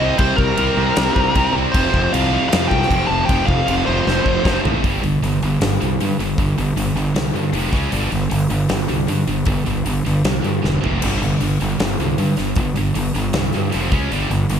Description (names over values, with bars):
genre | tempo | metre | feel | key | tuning
hard rock | 155 BPM | 4/4 | straight | unclear | A4 = 440 Hz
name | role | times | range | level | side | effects
nasal lead guitar with a parked wah | melody | 0.0-4.6 s | Bb4 to A5 | -20 LUFS | equal | overdrive, slapback echo
high-gain distorted guitar | riff | 0.0-14.6 s | F2 to C#4 | -25 LUFS | left 10 dB | distortion
high-gain distorted guitar | riff | 0.0-14.6 s | F2 to C#4 | -22 LUFS | right 9 dB | distortion
overdriven semi-hollow guitar | riff | 0.0-5.0 s | F2 to C4 | -24 LUFS | equal | none
fuzz fingered electric bass | bass | 0.0-14.6 s | E1 to G2 | -22 LUFS | equal | overdrive
huge arena drum kit | drums | 0.2-14.6 s | crash cymbal, hi-hat, kick drum, snare drum, toms | -22 LUFS | left 1 dB | none
room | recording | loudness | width
little or no reverb | none | -16 LUFS | side -8 dB against mid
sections
0.0-4.8 A section; 4.8-14.6 B section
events
drum fill 4.1-4.8, 10.6-11.0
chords
0.0 C5; 1.7 F5; 4.8 G5; 7.5 F5; 7.7 C#5; 7.9 G5; 10.8 F5; 11.0 G5; 13.7 F5; 13.9 C#5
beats
| 0.20 0.59 0.97 1.36 | 1.75 2.13 2.52 2.90 | 3.29 3.68 4.06 4.45 | 4.83 5.22 5.61 6.00 | 6.38 6.77 7.16 7.54 | 7.93 8.31 8.70 9.09 | 9.47 9.86 10.25 10.63 | 11.02 11.41 11.79 12.18 | 12.57 12.96 13.34 13.73 | 14.12 14.50